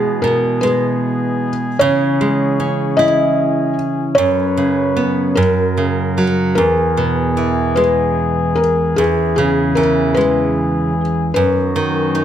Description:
children's music, lullaby; 51 BPM (dotted quarters); 6/8; straight; A4 = 440 Hz
felt-muted upright piano; melody; 0.0-12.1 s; G#4 to D#5; -18 LUFS; left 2 dB
nylon-string guitar; accompaniment; 0.0-12.2 s; E2 to E4; -16 LUFS; right 3 dB
mellow brass ensemble; sustained chords; 0.0-12.2 s; F#2 to B4; -22 LUFS; left 6 dB
light reverb; close, detailed microphones; -13 LUFS; side -10 dB against mid
0.0-12.2 A section
0.0 E/B; 1.8 C#m; 4.2 F#sus4; 5.4 F#; 6.6 E; 9.0 C#m/E; 11.4 B/F#
0.63 | 1.81 3.00 | 4.18 5.37 | 6.58 7.78 | 8.98 10.17 | 11.35

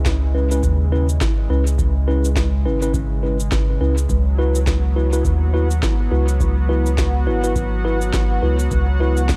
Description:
ambient dub; 104 BPM; 4/4; swing 58% on 16ths; C# minor; A4 = 435 Hz
warm analog pad; sustained chords; 0.0-9.4 s; C#3 to F#5; -30 LUFS; equal; chorus
soft dub sub bass; bass; 0.0-9.4 s; G#1 to D#2; -20 LUFS; equal
electronic kick drum; drums; 0.1-9.4 s; -25 LUFS; equal
electronic snare drum and cabasa; drums; 0.1-9.4 s; -30 LUFS; equal; dub echo
mellow tine electric piano; stabs; 0.3-9.2 s; C#4 to B4; -26 LUFS; equal; dub echo
little or no reverb; -18 LUFS; mono
0.0-9.4 A section
0.0 C#m7
0.06 0.63 1.21 | 1.79 2.37 2.94 3.52 | 4.09 4.67 5.25 5.83 | 6.40 6.98 7.56 8.13 | 8.71 9.29

